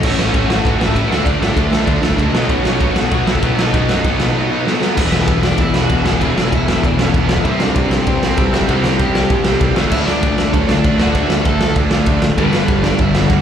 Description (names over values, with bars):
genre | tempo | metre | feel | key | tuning
punk rock | 194 BPM | 4/4 | straight | unclear | A4 = 439 Hz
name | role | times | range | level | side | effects
high-gain lead guitar | melody | 0.0-13.4 s | A3 to A5 | -22 LUFS | equal | distortion, slapback echo, digital delay
cranked stack guitar | riff | 0.0-13.4 s | G2 to E4 | -23 LUFS | equal | overdrive, slapback echo
crunchy overdriven guitar | riff | 0.0-13.4 s | E2 to D4 | -21 LUFS | left 9 dB | slapback echo
tight distorted guitar | riff | 0.0-13.4 s | E2 to D4 | -22 LUFS | right 11 dB | distortion, slapback echo
fuzz picked electric bass | bass | 0.0-13.4 s | E1 to A2 | -20 LUFS | equal | overdrive
raw garage drum kit | drums | 0.0-13.4 s | crash cymbal, kick drum, ride cymbal, snare drum | -17 LUFS | equal | none
room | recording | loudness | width
small room ambience | live gig heard through the venue's PA, club reverb | -13 LUFS | side -9 dB against mid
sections
0.0-5.0 A section; 5.0-13.4 B section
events
drum fill 4.7-5.0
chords
0.0 A; 1.1 D; 2.3 B; 5.0 E; 7.5 C; 9.8 D; 12.4 G